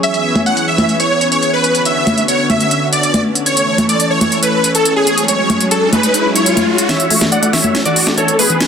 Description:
uplifting trance; 140 BPM; 4/4; straight; A4 = 441 Hz
supersaw chords; melody; 0.0-8.7 s; F#4 to F#5; -15 LUFS; equal; analog chorus, vintage 12-bit sampler grit, low-pass filter, dub echo
lush unison pad; sustained chords; 0.0-8.7 s; C#3 to E5; -18 LUFS; equal; chorus
techno drum kit; drums; 0.0-8.7 s; congas, hi-hat, snare drum; -15 LUFS; equal; overdrive, low-pass filter on hats, low-pass filter on perc, low-pass filter on snare
riser; sound effects; 4.8-8.7 s; -21 LUFS; left 2 dB
plucky unison lead; second line; 6.9-8.7 s; B4 to F#5; -20 LUFS; equal
wide unison pluck; arpeggios; 6.9-8.6 s; E3 to A3; -20 LUFS; left 3 dB
light reverb; dense, heavily limited modern master; -11 LUFS; side -7 dB against mid
0.0-6.9 A section; 6.9-8.7 B section
riser 4.8-6.9; build-up 6.9-8.7; drum fill 6.9-8.7; filter sweep on synth pluck 6.9-8.7
0.0 C#m7; 1.7 Bmadd9; 3.5 A; 5.2 F#sus2; 6.9 Dadd9

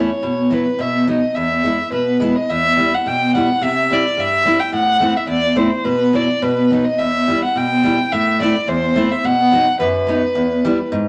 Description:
alpine folk; 107 BPM; 2/4; rubato; E minor; A4 = 440 Hz
dark fiddle; melody; 0.0-10.9 s; B4 to G5; -20 LUFS; equal
picked steel-string acoustic guitar; accompaniment; 0.0-11.1 s; E2 to E4; -20 LUFS; equal
wet studio reverb, RT60 0.9 s; -17 LUFS; mono
0.0-2.5 A section; 2.5-11.1 B section
0.2 Bsus4; 0.8 B; 1.3 E; 2.5 Em; 3.6 C; 4.7 Am; 5.8 Bsus4; 6.4 B; 7.0 Em; 8.1 Am; 9.2 B; 10.4 Em

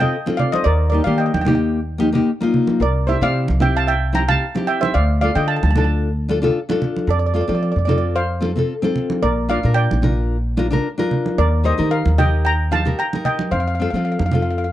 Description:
calypso; 112 BPM; 4/4; swing 54% on 16ths; A4 = 440 Hz
steel pan; melody; 0.0-14.7 s; A4 to Bb5; -21 LUFS; right 1 dB
nylon-string guitar; accompaniment; 0.0-14.7 s; Bb3 to Bb4; -21 LUFS; left 3 dB
upright bass; bass; 0.0-14.7 s; Bb1 to F3; -19 LUFS; equal
congas; percussion; 0.0-14.5 s; -23 LUFS; right 3 dB
small room ambience; dry, close 1970s-style studio recording; -16 LUFS; side -13 dB against mid
0.0-14.7 A section
0.0 F; 0.7 Eb; 2.8 C; 4.9 Dm; 7.1 F; 9.2 Bb; 11.4 Eb; 13.5 F

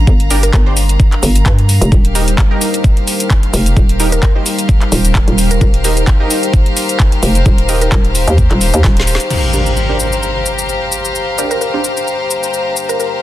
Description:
bass house; 130 BPM; 4/4; swing 55% on 16ths; G minor; A4 = 440 Hz
deep dark ambient pad; sustained chords; 0.0-13.2 s; G3 to Bb4; -23 LUFS; left 2 dB; chorus, built-in reverb, sidechain pumping
hollow knocking FM bass; bass; 0.0-9.2 s; Eb1 to G2; -12 LUFS; equal; sidechain pumping
rich chamber string section; texture; 0.0-13.2 s; G4 to Bb5; -19 LUFS; left 2 dB; sidechain pumping
electronic kick drum; drums; 0.1-8.9 s; -11 LUFS; equal
garage drum kit; drums; 0.1-13.1 s; crash cymbal, handclaps, hi-hat, shaker, snare drum; -19 LUFS; left 1 dB
orchestra-hit-like synth stab; stabs; 0.3-11.8 s; D4 to C5; -21 LUFS; right 4 dB; built-in reverb, sidechain pumping, tape echo
mallet-like synth pluck; melody; 0.4-0.6, 4.1-8.0, 11.5-13.1 s; Bb4; -22 LUFS; right 1 dB; chorus, tape echo
impact and riser; sound effects; 9.3-13.2 s; -19 LUFS; equal
digital ambience; dense, heavily limited modern master; -10 LUFS; side -14 dB against mid
0.0-9.3 A section; 9.3-13.2 B section
drum fill 8.8-9.3; impact 9.3-11.2; filter sweep on synth stab 9.3-13.2
0.0 Gm; 1.9 Eb; 9.3 Gm

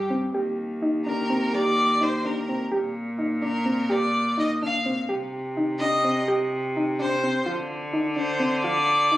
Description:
contemporary instrumental, chamber music in an uneven meter; 253 BPM (eighths); 5/8; straight; A4 = 440 Hz
clear violin; melody; 0.0-9.2 s; G4 to F5; -25 LUFS; left 1 dB
soft round pluck; arpeggios; 0.0-9.2 s; C4 to G4; -27 LUFS; equal; chorus
rich cello; bass; 0.0-9.2 s; Eb2 to D3; -27 LUFS; equal
moderate recital hall reverb, RT60 1.6 s; recorded on a phone in the room, studio ambience; -22 LUFS; side -15 dB against mid
0.3-9.2 A section
0.3 Eb6; 2.7 Bb6; 5.1 Cm; 7.5 Dm7

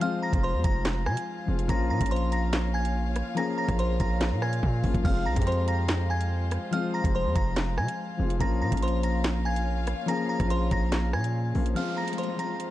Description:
hip hop, drill; 143 BPM; 4/4; half-time; F minor; A4 = 440 Hz
delicate synth tine bell; melody; 0.0-12.7 s; C5 to Bb6; -32 LUFS; equal; chorus, low-pass filter, digital delay
dark concert grand piano; accompaniment; 0.0-12.7 s; F3 to Ab4; -31 LUFS; left 5 dB; low-pass filter
dark studio string section; sustained chords; 0.0-12.7 s; Ab3 to F5; -38 LUFS; equal
drill drum kit; drums; 0.0-12.7 s; crash cymbal, handclaps, hi-hat, kick drum, rim click, snare drum; -29 LUFS; right 1 dB; vintage 12-bit sampler grit
distorted 808-style bass; bass; 0.3-11.8 s; F1 to C3; -27 LUFS; right 1 dB; distortion
downlifter; sound effects; 11.8-12.7 s; -36 LUFS; left 4 dB
little or no reverb; dark, warm production; -24 LUFS; side -14 dB against mid
0.0-11.8 A section
drum fill 4.6-5.0
0.0 Fm; 1.7 Bbm; 5.0 Fm; 8.4 Bbm; 11.8 Fm

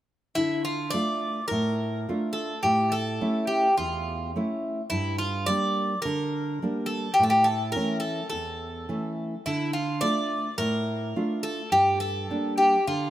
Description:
greek folk, Greek bouzouki band; 106 BPM; 4/4; straight; D harmonic minor; A4 = 440 Hz
Greek bouzouki; melody; 0.4-13.1 s; E4 to D5; -25 LUFS; equal
nylon-string guitar; accompaniment; 0.4-13.1 s; E2 to F4; -28 LUFS; right 1 dB
moderate plate reverb, RT60 3.3 s; -24 LUFS; side -13 dB against mid
0.4-13.1 A section
0.4 Dm; 2.6 A; 4.9 Gm; 7.2 A; 9.4 Dm; 11.7 Gm

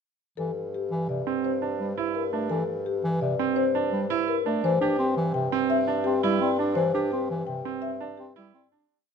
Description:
classical, minimalist pattern music; 169 BPM; 6/4; straight; G dorian; A4 = 443 Hz
marimba with soft mallets; melody; 0.4-8.8 s; G4 to G5; -29 LUFS; left 10 dB
mellow bass clarinet; accompaniment; 0.4-8.9 s; C3 to D4; -29 LUFS; equal
mellow bassoon; bass; 0.4-8.8 s; G2; -32 LUFS; right 2 dB
clear concert grand piano; arpeggios; 1.3-9.0 s; C4 to G4; -28 LUFS; right 9 dB
moderate scoring stage reverb, RT60 1.7 s; close, detailed microphones; -24 LUFS; side -6 dB against mid
0.4-8.9 A section
fade-out 6.8-8.9
0.4 G5; 4.6 C/G

